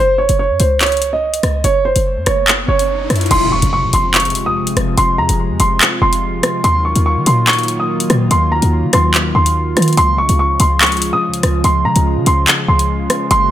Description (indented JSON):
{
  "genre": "hip hop, drill",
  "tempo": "144 BPM",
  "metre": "4/4",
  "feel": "half-time",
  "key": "F phrygian",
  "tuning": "A4 = 440 Hz",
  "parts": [
    { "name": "dark concert grand piano", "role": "melody", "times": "0.0-13.5 s", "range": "C5 to Eb6", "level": "-16 LUFS", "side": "right 1 dB", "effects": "none" },
    { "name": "short 808-style bass", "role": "bass", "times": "0.0-13.5 s", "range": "Eb1 to Eb3", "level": "-16 LUFS", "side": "equal", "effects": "none" },
    { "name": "drill drum kit", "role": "drums", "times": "0.3-13.4 s", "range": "crash cymbal, handclaps, hi-hat, rim click", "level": "-16 LUFS", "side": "left 1 dB", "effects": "none" },
    { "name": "riser and impact", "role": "sound effects", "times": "2.2-5.0 s", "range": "none", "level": "-23 LUFS", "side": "left 2 dB", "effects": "none" },
    { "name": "warm analog pad", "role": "sustained chords", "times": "3.3-13.5 s", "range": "C3 to Gb4", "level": "-20 LUFS", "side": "equal", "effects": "chorus" }
  ],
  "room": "light reverb, digital ambience",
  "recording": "none",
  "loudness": "-12 LUFS",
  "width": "side -12 dB against mid",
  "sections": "0.0-3.3 A section; 3.3-13.5 B section",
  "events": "riser 2.2-3.3; impact 3.3-5.0",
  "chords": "0.0 Gb5; 3.3 Fm; 6.6 Ebmadd9; 10.0 Db",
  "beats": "0.39 0.81 1.23 | 1.64 2.06 2.48 2.89 | 3.31 3.73 4.14 4.56 | 4.98 5.39 5.81 6.23 | 6.64 7.06 7.48 7.89 | 8.31 8.73 9.14 9.56 | 9.98 10.39 10.81 11.23 | 11.64 12.06 12.48 12.89 | 13.31"
}